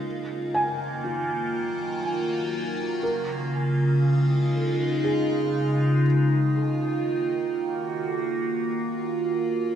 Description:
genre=ambient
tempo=60 BPM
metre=3/4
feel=straight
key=unclear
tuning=A4 = 440 Hz
part: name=evolving wavetable pad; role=sustained chords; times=0.0-9.8 s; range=C#3 to C#5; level=-23 LUFS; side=equal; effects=phaser, built-in reverb
part: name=felt-muted upright piano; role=arpeggios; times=0.0-6.1 s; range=A#3 to G#5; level=-31 LUFS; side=right 2 dB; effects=diffuse ambient delay
room=wet concert hall reverb, RT60 2.3 s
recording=cassette tape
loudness=-23 LUFS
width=side -9 dB against mid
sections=0.0-6.0 A section; 6.0-9.8 B section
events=none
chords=0.1 D#madd9; 3.0 C#; 6.0 D#m; 9.0 A#m

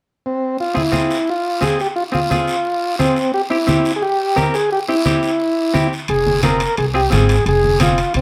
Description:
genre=latin, cumbia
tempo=175 BPM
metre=4/4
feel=straight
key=F harmonic minor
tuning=A4 = 439 Hz
part: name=combo organ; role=melody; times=0.3-8.2 s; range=C4 to Bb4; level=-20 LUFS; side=equal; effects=none
part: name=guiro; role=percussion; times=0.6-8.2 s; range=none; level=-30 LUFS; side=equal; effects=none
part: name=semi-hollow electric guitar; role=accompaniment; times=0.7-8.0 s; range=C4 to Ab4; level=-24 LUFS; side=equal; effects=none
part: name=congas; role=percussion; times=0.8-8.0 s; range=none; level=-23 LUFS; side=equal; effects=none
part: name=upright bass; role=bass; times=6.1-8.2 s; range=F1 to C2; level=-20 LUFS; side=equal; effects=none
part: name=timbales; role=percussion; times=6.1-8.2 s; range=none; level=-29 LUFS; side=equal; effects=none
room=wet small room reverb, RT60 0.5 s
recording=rough home demo mix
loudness=-17 LUFS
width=mono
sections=0.6-6.1 A section; 6.1-8.2 B section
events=none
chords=0.0 N.C.; 0.6 Fm; 3.3 C; 6.1 Fm

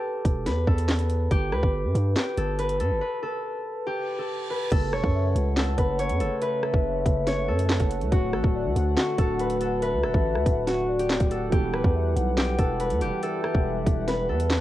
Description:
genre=hip hop, drill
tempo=141 BPM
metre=4/4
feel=half-time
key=F# phrygian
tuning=A4 = 439 Hz
part: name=concert harp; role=melody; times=0.0-14.6 s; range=F#4 to C#5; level=-27 LUFS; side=equal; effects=cassette tape
part: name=long sustained 808-style bass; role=bass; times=0.2-14.6 s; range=D1 to G2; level=-26 LUFS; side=equal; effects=none
part: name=drill drum kit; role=drums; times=0.2-14.6 s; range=crash cymbal, handclaps, hi-hat, kick drum, rim click, snare drum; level=-25 LUFS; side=equal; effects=cassette tape
part: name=reverse cymbal and impact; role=sound effects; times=4.0-6.4 s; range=none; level=-41 LUFS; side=right 3 dB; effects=none
part: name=warm analog pad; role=sustained chords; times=4.7-14.6 s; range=C#3 to F#5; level=-34 LUFS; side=right 1 dB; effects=chorus
part: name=hollow clarinet-like synth lead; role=second line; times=5.1-14.6 s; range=D5 to F#5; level=-34 LUFS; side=left 9 dB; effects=chorus, analog delay
part: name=dark grand piano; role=accompaniment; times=11.5-14.6 s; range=E3 to G4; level=-36 LUFS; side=right 9 dB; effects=none
room=digital ambience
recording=home recording on cassette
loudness=-22 LUFS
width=side -14 dB against mid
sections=0.0-4.7 A section; 4.7-14.6 B section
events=break 3.0-4.7; reverse cymbal 4.0-4.7; impact 4.7-6.4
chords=0.0 Em; 1.3 G; 4.7 F#m; 8.1 D; 11.5 Emadd9

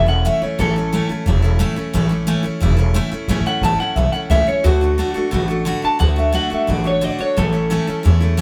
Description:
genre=rock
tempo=177 BPM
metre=4/4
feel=straight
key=A major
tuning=A4 = 442 Hz
part: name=electric guitar through a small old amp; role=melody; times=0.0-8.0 s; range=F#4 to A5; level=-22 LUFS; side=equal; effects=none
part: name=picked steel-string acoustic guitar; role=accompaniment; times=0.0-8.4 s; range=A2 to F#4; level=-24 LUFS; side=equal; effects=none
part: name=upright bass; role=bass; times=0.0-8.4 s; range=E1 to E2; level=-20 LUFS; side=equal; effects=none
room=moderate stone room reverb, RT60 1.0 s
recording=band playing live in one room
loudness=-18 LUFS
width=mono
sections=0.0-8.4 A section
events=none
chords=0.0 A; 4.6 D; 7.4 A

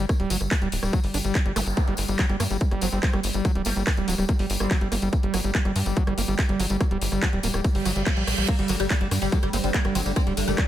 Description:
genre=psychedelic trance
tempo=143 BPM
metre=4/4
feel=straight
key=G harmonic minor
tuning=A4 = 436 Hz
part: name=overdriven acid bass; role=riff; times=0.0-10.6 s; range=F#3 to D4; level=-29 LUFS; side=moving between left 3 dB and right 3 dB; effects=distortion, auto-pan, sidechain pumping, dub echo
part: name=tight sequencer bass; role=bass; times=0.0-10.5 s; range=D1 to G2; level=-27 LUFS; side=equal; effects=none
part: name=airy breathy pad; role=texture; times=0.1-10.7 s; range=G3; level=-33 LUFS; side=right 4 dB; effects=chorus, sidechain pumping
part: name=drum and bass drum kit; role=drums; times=0.1-10.7 s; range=crash cymbal, handclaps, hi-hat, ride cymbal, rim click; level=-31 LUFS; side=equal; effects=overdrive
part: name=electronic kick drum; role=drums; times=0.1-10.7 s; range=none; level=-23 LUFS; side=equal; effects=overdrive
part: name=tambourine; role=percussion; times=0.1-10.7 s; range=none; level=-36 LUFS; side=left 4 dB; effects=none
part: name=zap and reverse cymbal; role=sound effects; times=1.6-1.7, 7.8-8.5 s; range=none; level=-32 LUFS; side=right 3 dB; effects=none
part: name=resonant blip pluck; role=second line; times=2.8-5.2, 9.5-10.5 s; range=Bb3 to C4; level=-37 LUFS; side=equal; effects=phaser, lush chorus, sidechain pumping, high-pass filter, tape echo
part: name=oud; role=melody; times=8.5-10.6 s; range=D3 to C4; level=-30 LUFS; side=left 2 dB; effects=phaser, sidechain pumping, dub echo
part: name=overtone-sweeping drone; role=sustained chords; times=9.3-10.7 s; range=G3 to D4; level=-35 LUFS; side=right 3 dB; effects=chorus, built-in reverb, sidechain pumping
room=digital ambience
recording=none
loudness=-21 LUFS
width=side -12 dB against mid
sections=0.0-10.7 A section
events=reverse cymbal 7.8-8.5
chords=0.0 G5

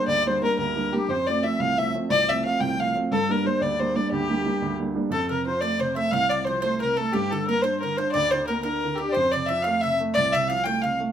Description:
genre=celtic folk, Celtic jig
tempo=119 BPM (dotted quarters)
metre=6/8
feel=straight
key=unclear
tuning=A4 = 445 Hz
part: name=rich fiddle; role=melody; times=0.0-11.0 s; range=G4 to G5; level=-24 LUFS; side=equal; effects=none
part: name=accordion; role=second line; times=0.0-11.0 s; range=G4 to G5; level=-30 LUFS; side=left 7 dB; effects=light tremolo tuning
part: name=warm upright piano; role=accompaniment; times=0.0-11.1 s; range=C2 to D4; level=-26 LUFS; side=right 3 dB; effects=none
part: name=bowl-back mandolin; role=second line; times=5.1-11.0 s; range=G4 to G5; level=-33 LUFS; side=right 2 dB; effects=none
room=moderate studio reverb, RT60 0.6 s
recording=none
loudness=-21 LUFS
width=side -9 dB against mid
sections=0.0-5.1 A section; 5.1-11.1 A section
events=none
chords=0.0 Gm; 1.1 F; 3.1 Gm; 5.1 F; 7.1 Gm; 9.1 F

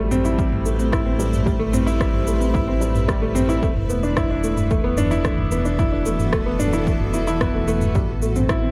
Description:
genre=piano and strings electronica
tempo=111 BPM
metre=4/4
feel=straight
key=A dorian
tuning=A4 = 439 Hz
part: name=granular cloud pad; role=sustained chords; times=0.0-8.7 s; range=E3 to C5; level=-31 LUFS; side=equal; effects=built-in reverb, sidechain pumping
part: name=warm upright piano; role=riff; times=0.0-8.7 s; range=G3 to B4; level=-24 LUFS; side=equal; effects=digital delay
part: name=dark detuned saw bass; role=bass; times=0.0-8.7 s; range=E1 to A1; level=-27 LUFS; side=equal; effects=sidechain pumping
part: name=minimal click drum kit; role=drums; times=0.1-8.6 s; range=rim click, shaker, toms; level=-29 LUFS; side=equal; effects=none
part: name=electronic kick drum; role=drums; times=0.4-8.6 s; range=none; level=-26 LUFS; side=equal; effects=overdrive
room=light reverb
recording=none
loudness=-20 LUFS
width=mono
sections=0.0-8.7 A section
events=none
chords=0.0 Am7; 3.6 E7sus4; 8.0 Am

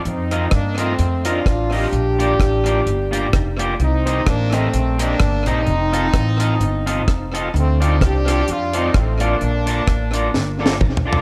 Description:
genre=ska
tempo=128 BPM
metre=4/4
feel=swing 56% on 8ths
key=unclear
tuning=A4 = 439 Hz
part: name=clear horn section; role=melody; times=0.1-10.8 s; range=A3 to G4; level=-24 LUFS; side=equal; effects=tape echo
part: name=upright bass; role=bass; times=0.1-11.2 s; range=F1 to G2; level=-22 LUFS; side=equal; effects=none
part: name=deep reggae drum kit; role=drums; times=0.1-11.2 s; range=hi-hat, kick drum, rim click, snare drum, toms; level=-23 LUFS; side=equal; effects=tape echo
part: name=electric guitar at the edge of break-up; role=accompaniment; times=0.3-11.2 s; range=Bb3 to Eb5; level=-28 LUFS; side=equal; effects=none
part: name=tonewheel organ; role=stabs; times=0.3-11.2 s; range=C4 to C5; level=-31 LUFS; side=equal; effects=slow rotary speaker
room=light reverb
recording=none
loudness=-18 LUFS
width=mono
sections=0.0-11.2 A section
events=drum fill 10.3-11.2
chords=0.1 F7sus4; 1.9 Bb6; 3.8 Cm7; 5.7 F7; 7.5 Dm7; 9.4 Bbmaj7

